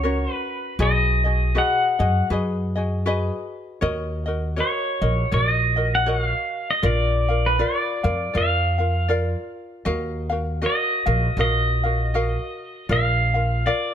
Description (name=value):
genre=Hawaiian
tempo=79 BPM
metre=4/4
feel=swing 59% on 8ths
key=Eb minor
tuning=A4 = 440 Hz
part: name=pedal steel guitar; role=melody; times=0.0-13.9 s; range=Cb5 to F#5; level=-23 LUFS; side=equal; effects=none
part: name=ukulele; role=accompaniment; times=0.0-13.9 s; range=Db4 to F5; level=-26 LUFS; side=left 1 dB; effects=none
part: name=upright bass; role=bass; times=0.0-13.7 s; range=Bb1 to F#2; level=-22 LUFS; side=equal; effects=none
room=light reverb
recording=none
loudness=-20 LUFS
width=side -9 dB against mid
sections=0.0-13.9 A section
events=none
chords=0.0 Gb; 0.8 B6; 3.8 Ebm7; 6.8 Bb; 9.9 Ebmadd9; 12.9 Bb